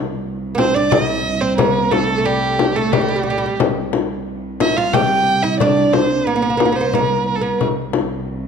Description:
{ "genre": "Arabic maqam ensemble", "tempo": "90 BPM", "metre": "3/4", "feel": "straight", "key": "C maqam rast", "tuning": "A4 = 440 Hz", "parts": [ { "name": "warm symphonic cello section", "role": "drone", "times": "0.0-8.5 s", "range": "C2", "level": "-24 LUFS", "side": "right 1 dB", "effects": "none" }, { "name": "oud", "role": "second line", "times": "0.5-7.6 s", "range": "G3 to G4", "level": "-20 LUFS", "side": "right 2 dB", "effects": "none" }, { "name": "warm violin", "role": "melody", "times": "0.6-7.6 s", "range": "G4 to G5", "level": "-19 LUFS", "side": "right 3 dB", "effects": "none" }, { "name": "frame drum", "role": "percussion", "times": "0.6-8.1 s", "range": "none", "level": "-20 LUFS", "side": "left 7 dB", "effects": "none" } ], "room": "moderate recital hall reverb, RT60 1.6 s", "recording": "dark, warm production", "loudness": "-15 LUFS", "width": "side -6 dB against mid", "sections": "0.0-8.5 A section", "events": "none", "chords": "none" }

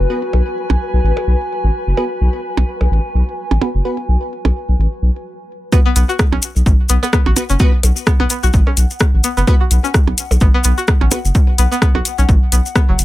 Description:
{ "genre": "minimal techno", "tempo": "128 BPM", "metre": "4/4", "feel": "swing 56% on 16ths", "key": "unclear", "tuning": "A4 = 440 Hz", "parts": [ { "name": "saturated sub bass", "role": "bass", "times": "0.0-13.0 s", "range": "F#1 to B1", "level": "-14 LUFS", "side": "equal", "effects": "sidechain pumping" }, { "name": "flickering grainy texture", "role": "texture", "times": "0.0-5.3 s", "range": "F#3 to B4", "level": "-32 LUFS", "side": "left 2 dB", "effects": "built-in reverb, sidechain pumping" }, { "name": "warbly tape-like pad", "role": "texture", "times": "0.0-13.0 s", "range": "F#4 to G#5", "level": "-26 LUFS", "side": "left 1 dB", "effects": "chorus, built-in reverb, sidechain pumping" }, { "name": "wavetable chord stab", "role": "stabs", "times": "0.1-11.2 s", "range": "B3 to B4", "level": "-24 LUFS", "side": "equal", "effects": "ping-pong delay" }, { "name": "percussion blips", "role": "percussion", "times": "0.3-12.9 s", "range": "none", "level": "-22 LUFS", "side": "right 5 dB", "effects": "ping-pong delay" }, { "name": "string-like resonator pluck", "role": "riff", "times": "5.7-12.9 s", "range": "F#3 to F#4", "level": "-22 LUFS", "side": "left 1 dB", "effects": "chorus, sidechain pumping, ping-pong delay" }, { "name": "electronic kick drum", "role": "drums", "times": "5.7-12.9 s", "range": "none", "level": "-13 LUFS", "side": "equal", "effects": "overdrive" }, { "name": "maracas", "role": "percussion", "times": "5.7-13.0 s", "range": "none", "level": "-24 LUFS", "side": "left 3 dB", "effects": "none" }, { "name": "punchy analog drum machine", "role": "drums", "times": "6.0-13.0 s", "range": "hi-hat, rim click", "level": "-17 LUFS", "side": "left 1 dB", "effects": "overdrive" } ], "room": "little or no reverb", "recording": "none", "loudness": "-12 LUFS", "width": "side -16 dB against mid", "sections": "0.0-5.7 A section; 5.7-13.0 B section", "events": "filter sweep on synth stab 0.0-5.7; break 5.3-5.7; drop 5.7-13.0", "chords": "0.0 B5" }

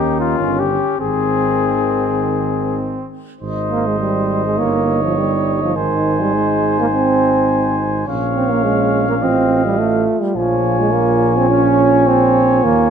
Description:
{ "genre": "classical, brass quintet", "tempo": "103 BPM", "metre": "4/4", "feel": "uneven beats, rubato", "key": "Ab major", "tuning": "A4 = 440 Hz", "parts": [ { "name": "mellow trumpet", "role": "melody", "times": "0.0-12.9 s", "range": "F4 to Ab5", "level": "-21 LUFS", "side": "left 12 dB", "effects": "none" }, { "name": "mellow trumpet", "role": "second line", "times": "0.0-12.9 s", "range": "C4 to Eb5", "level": "-23 LUFS", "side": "right 8 dB", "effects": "none" }, { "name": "bright trombone", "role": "accompaniment", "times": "0.0-12.9 s", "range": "Eb3 to Db4", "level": "-18 LUFS", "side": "right 4 dB", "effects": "none" }, { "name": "warm French horn", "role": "accompaniment", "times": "0.0-12.9 s", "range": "C4 to F4", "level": "-22 LUFS", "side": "left 4 dB", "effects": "none" }, { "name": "mellow tuba", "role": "bass", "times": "0.0-12.9 s", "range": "G1 to Eb2", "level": "-22 LUFS", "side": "right 4 dB", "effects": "none" } ], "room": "moderate concert hall reverb, RT60 1.8 s", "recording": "close, detailed microphones", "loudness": "-14 LUFS", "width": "side -7 dB against mid", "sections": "0.0-3.4 A section; 3.4-12.9 A section", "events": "none", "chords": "0.0 Eb7; 1.0 Ab; 4.6 Eb7/G; 5.8 Ab; 8.1 Bbm; 9.2 F7/A; 10.4 Bbm7" }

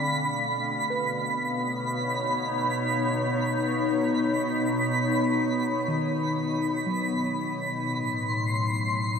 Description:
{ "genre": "ambient", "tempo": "61 BPM", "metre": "4/4", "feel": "straight", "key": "unclear", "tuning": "A4 = 440 Hz", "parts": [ { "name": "glassy FM pad", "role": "sustained chords", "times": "0.0-9.2 s", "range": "A2 to F5", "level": "-26 LUFS", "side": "left 1 dB", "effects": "ensemble chorus, built-in reverb, shimmer reverb" }, { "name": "muted felt-like synth keys", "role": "arpeggios", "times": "0.0-9.2 s", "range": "D#3 to G5", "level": "-36 LUFS", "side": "equal", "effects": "chorus, diffuse ambient delay, shimmer reverb" }, { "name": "twinkling granular texture", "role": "texture", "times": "0.0-9.2 s", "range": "B5 to C6", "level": "-29 LUFS", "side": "right 1 dB", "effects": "built-in reverb, shimmer reverb" } ], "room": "wet huge ambient reverb, RT60 7.4 s", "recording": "none", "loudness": "-24 LUFS", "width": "side -6 dB against mid", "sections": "0.0-9.2 A section", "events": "none", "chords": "0.0 Badd9; 7.9 Am" }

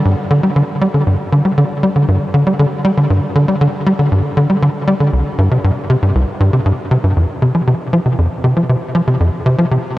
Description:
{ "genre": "ambient", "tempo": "118 BPM", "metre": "4/4", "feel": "straight", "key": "unclear", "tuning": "A4 = 439 Hz", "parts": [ { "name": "tight sequencer bass", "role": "solo", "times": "0.0-9.8 s", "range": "C2 to G3", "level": "-12 LUFS", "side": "equal", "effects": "analog chorus, tape echo" } ], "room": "moderate huge ambient reverb, RT60 8.9 s", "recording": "worn, warbling old tape, cassette tape, warbly pitch drift", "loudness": "-12 LUFS", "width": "side -16 dB against mid", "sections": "0.0-7.2 A section; 7.2-10.0 B section", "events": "none", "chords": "none" }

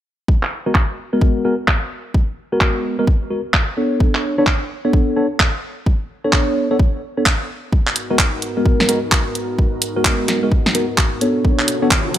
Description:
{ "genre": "UK garage, two-step garage", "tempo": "129 BPM", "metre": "4/4", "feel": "swing 63% on 16ths", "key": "G# minor", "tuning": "A4 = 441 Hz", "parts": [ { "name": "electronic kick drum", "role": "drums", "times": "0.3-12.0 s", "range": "none", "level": "-16 LUFS", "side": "equal", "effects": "none" }, { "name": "house drum kit", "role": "drums", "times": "0.4-12.2 s", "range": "handclaps, hi-hat, snare drum", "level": "-19 LUFS", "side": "right 1 dB", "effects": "low-pass filter on snare, low-pass filter on hats, low-pass filter on room" }, { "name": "tine electric piano", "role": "stabs", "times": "0.7-11.9 s", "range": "G#3 to C#5", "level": "-19 LUFS", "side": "equal", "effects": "phaser, low-pass filter, dub echo" }, { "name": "airy breathy pad", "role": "sustained chords", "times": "7.7-12.2 s", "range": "G#2 to C#5", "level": "-26 LUFS", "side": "equal", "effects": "chorus, sidechain pumping" }, { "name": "riser", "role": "sound effects", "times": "11.8-12.2 s", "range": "none", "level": "-27 LUFS", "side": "equal", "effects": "none" } ], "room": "light reverb, digital ambience", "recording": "none", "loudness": "-15 LUFS", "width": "side -12 dB against mid", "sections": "0.3-12.2 A section", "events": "filter sweep on drum 0.3-12.2; riser 11.8-12.2", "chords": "0.3 G#m9; 3.8 Bm9; 7.7 G#m9; 11.2 Bm9" }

